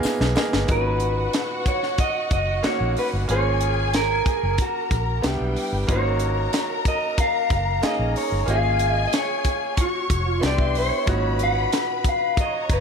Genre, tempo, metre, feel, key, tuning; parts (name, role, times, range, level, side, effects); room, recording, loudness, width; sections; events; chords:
lush 1970s-style soul; 92 BPM; 4/4; straight; A4 = 439 Hz
electric guitar through a small old amp; melody; 0.0-12.8 s; F#4 to F#5; -24 LUFS; equal; spring reverb
bright grand piano; accompaniment; 0.0-12.8 s; A#2 to G#4; -29 LUFS; right 2 dB
vintage muted fingered electric bass; bass; 0.0-12.8 s; E#1 to C2; -24 LUFS; equal
tight funk drum kit; drums; 0.0-12.8 s; hi-hat, kick drum, snare drum; -24 LUFS; equal
tambourine; percussion; 0.0-0.5 s; -36 LUFS; left 12 dB
warm studio string section; second line; 0.7-12.8 s; G3 to C#6; -29 LUFS; left 2 dB
light reverb, small room ambience; -20 LUFS; side -6 dB against mid
0.7-12.8 A section
drum fill 0.0-0.7
0.0 G#m69; 0.7 Bmaj9/G#; 3.3 F#maj9/G#; 5.2 Cmaj9; 5.9 F#maj13; 8.5 F#maj9/G#; 10.4 Cmaj9; 11.1 Bmaj9/G#